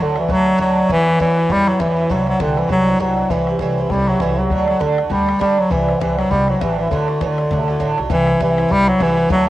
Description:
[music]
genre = celtic folk, Celtic reel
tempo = 200 BPM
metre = 4/4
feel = swing 58% on 8ths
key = unclear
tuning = A4 = 445 Hz
[part]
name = clear bass clarinet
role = melody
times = 0.0-9.5 s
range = C3 to G3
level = -16 LUFS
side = equal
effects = cassette tape
[part]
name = cimbalom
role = second line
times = 0.0-9.5 s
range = D4 to A4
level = -30 LUFS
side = right 5 dB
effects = cassette tape
[part]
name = mellow hollow baroque flute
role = second line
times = 0.0-9.5 s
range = D5 to G5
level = -28 LUFS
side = left 6 dB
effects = cassette tape
[part]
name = Irish bouzouki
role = accompaniment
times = 0.0-9.5 s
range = G2 to E4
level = -23 LUFS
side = right 6 dB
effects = cassette tape
[part]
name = upright bass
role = bass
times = 0.0-9.5 s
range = A1 to E2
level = -24 LUFS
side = equal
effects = none
[part]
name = bodhran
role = percussion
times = 0.2-9.4 s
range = none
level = -27 LUFS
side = left 3 dB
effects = none
[sound]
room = light reverb, small room ambience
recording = home recording on cassette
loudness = -14 LUFS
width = side -15 dB against mid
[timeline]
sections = 0.0-8.1 A section; 8.1-9.5 A section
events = none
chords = 0.0 D; 0.9 Emadd9; 2.1 Cadd9; 3.3 C6; 4.5 Gsus2/D; 5.7 Cadd9; 6.9 D; 8.1 C

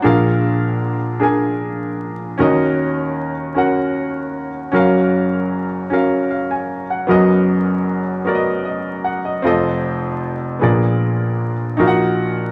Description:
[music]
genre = gospel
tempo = 51 BPM (dotted quarters)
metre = 6/8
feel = straight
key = Eb minor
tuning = A4 = 440 Hz
[part]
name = clear concert grand piano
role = solo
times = 0.0-12.5 s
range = F1 to Ab5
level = -18 LUFS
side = equal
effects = none
[sound]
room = wet club reverb, RT60 0.5 s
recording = vinyl crackle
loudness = -18 LUFS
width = mono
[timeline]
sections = 0.0-12.5 A section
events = none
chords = 0.0 Bb7; 2.4 Ebm7; 4.7 Gbmaj7; 7.1 Bmaj7/F#; 9.4 F7; 10.6 Bb7b9; 11.8 Ebm/Bb

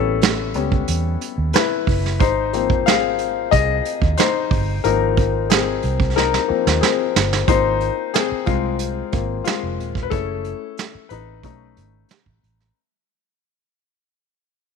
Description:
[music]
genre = lush 1970s-style soul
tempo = 91 BPM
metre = 4/4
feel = straight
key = unclear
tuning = A4 = 438 Hz
[part]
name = clear baby grand piano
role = accompaniment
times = 0.0-12.8 s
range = F3 to F5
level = -20 LUFS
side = left 12 dB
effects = none
[part]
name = vintage muted fingered electric bass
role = bass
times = 0.0-12.7 s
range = Eb1 to E2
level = -24 LUFS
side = right 2 dB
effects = none
[part]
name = vintage brush drum kit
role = drums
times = 0.2-12.7 s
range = hi-hat, kick drum, snare drum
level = -20 LUFS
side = right 6 dB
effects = none
[sound]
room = small room ambience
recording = 1960s-style stereo with parts hard left and right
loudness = -17 LUFS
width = side -5 dB against mid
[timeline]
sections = 0.0-7.5 A section; 7.5-12.8 B section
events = grand piano solo 0.0-7.5, 7.5-12.8; drum fill 6.2-7.5; fade-out 7.5-12.8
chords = 0.0 A9; 2.2 Ab69; 10.1 Gbm7; 11.4 B9

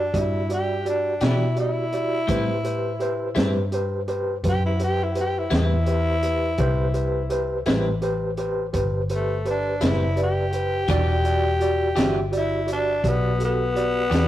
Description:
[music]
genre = slow blues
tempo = 56 BPM (dotted quarters)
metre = 12/8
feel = straight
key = unclear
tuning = A4 = 438 Hz
[part]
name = growling tenor saxophone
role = melody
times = 0.0-14.3 s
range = A3 to G4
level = -26 LUFS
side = left 1 dB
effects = analog delay
[part]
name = overdriven tine electric piano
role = accompaniment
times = 0.0-14.3 s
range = F#4 to E5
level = -26 LUFS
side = right 1 dB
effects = medium tremolo
[part]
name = vintage muted fingered electric bass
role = bass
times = 0.0-14.3 s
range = E1 to B2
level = -25 LUFS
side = equal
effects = none
[part]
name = crunchy breakbeat drum kit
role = drums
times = 0.1-14.3 s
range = hi-hat, kick drum, snare drum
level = -27 LUFS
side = equal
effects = none
[part]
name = clean electric guitar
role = accompaniment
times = 1.2-14.3 s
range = A2 to G4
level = -29 LUFS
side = left 1 dB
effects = harmonic tremolo
[sound]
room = light reverb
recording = rough rehearsal-room recording, warm saturation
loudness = -20 LUFS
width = side -13 dB against mid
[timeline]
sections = 0.0-14.3 A section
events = tenor saxophone solo 0.0-14.3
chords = 0.0 Em7; 2.3 Am7; 10.9 Em7

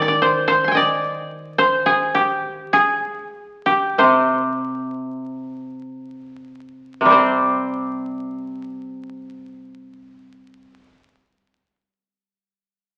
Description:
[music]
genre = japanese traditional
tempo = 32-56 BPM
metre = 2/4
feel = rubato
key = C hirajoshi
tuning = A4 = 439 Hz
[part]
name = koto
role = melody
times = 0.0-10.8 s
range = G4 to C6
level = -20 LUFS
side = equal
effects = none
[part]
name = koto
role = accompaniment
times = 0.0-10.8 s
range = C3 to C4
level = -22 LUFS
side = equal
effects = none
[sound]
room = wet recital hall reverb, RT60 1.4 s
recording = very old 78 rpm record, vinyl crackle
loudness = -19 LUFS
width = mono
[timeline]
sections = 0.0-7.1 A section; 7.1-10.7 B section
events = slowing down 1.6-7.1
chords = none

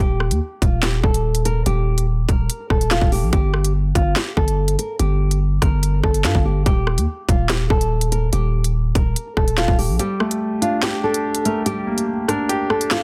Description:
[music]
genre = hip hop, drill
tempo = 144 BPM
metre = 4/4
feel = half-time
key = unclear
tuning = A4 = 437 Hz
[part]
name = nylon-string guitar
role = melody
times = 0.0-13.0 s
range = F4 to Bb4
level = -26 LUFS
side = equal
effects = none
[part]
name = growling 808-style bass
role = bass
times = 0.0-10.0 s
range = Eb1 to G2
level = -22 LUFS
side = equal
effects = none
[part]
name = drill drum kit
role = drums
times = 0.2-13.0 s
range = handclaps, hi-hat, kick drum, rim click, snare drum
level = -22 LUFS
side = equal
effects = overdrive
[part]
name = dark concert grand piano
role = accompaniment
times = 10.0-13.0 s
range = G3 to G4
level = -24 LUFS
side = equal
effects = none
[sound]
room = little or no reverb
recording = dense, heavily limited modern master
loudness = -19 LUFS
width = mono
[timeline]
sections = 0.0-13.0 A section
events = kick muted 10.0-13.0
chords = 0.0 Eb; 3.3 N.C.; 6.7 Eb; 10.0 Gmadd9

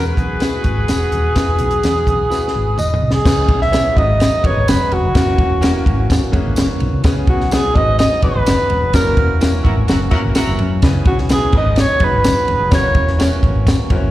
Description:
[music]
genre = uptempo 1960s-style soul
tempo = 127 BPM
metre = 4/4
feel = straight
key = F# mixolydian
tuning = A4 = 440 Hz
[part]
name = warm alto saxophone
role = melody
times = 0.0-13.2 s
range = F#4 to E5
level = -18 LUFS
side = right 1 dB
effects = slapback echo
[part]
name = warm horn section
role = second line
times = 0.0-3.0, 9.6-10.7 s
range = E4 to B4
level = -25 LUFS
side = equal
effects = slapback echo
[part]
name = bright upright piano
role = accompaniment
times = 0.0-14.1 s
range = G#2 to C#5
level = -26 LUFS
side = left 4 dB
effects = slapback echo
[part]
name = hollow-body short-scale fingered electric bass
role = bass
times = 0.0-14.1 s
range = D#1 to F#2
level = -18 LUFS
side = equal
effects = none
[part]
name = compact cocktail drum kit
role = drums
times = 0.2-14.0 s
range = crash cymbal, hi-hat, kick drum, ride cymbal, snare drum, toms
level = -16 LUFS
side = equal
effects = none
[part]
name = tambourine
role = percussion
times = 0.4-13.8 s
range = none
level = -33 LUFS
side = right 1 dB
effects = none
[part]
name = percussive tonewheel organ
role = sustained chords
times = 3.3-14.1 s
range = E3 to G#4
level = -26 LUFS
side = right 2 dB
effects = overdrive, lush chorus
[sound]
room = studio reverb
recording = live gig heard through the venue's PA, recital hall reverb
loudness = -12 LUFS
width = side -15 dB against mid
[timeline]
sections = 0.0-3.3 A section; 3.3-14.1 B section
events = drum fill 2.3-3.3; band accent 8.9-10.8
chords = 0.0 Eadd9; 3.3 C#m7; 4.0 G#m7; 5.2 F#7; 7.0 C#m7; 7.8 G#m7; 8.9 F#7; 10.8 C#m7; 11.5 G#m7; 12.7 F#7

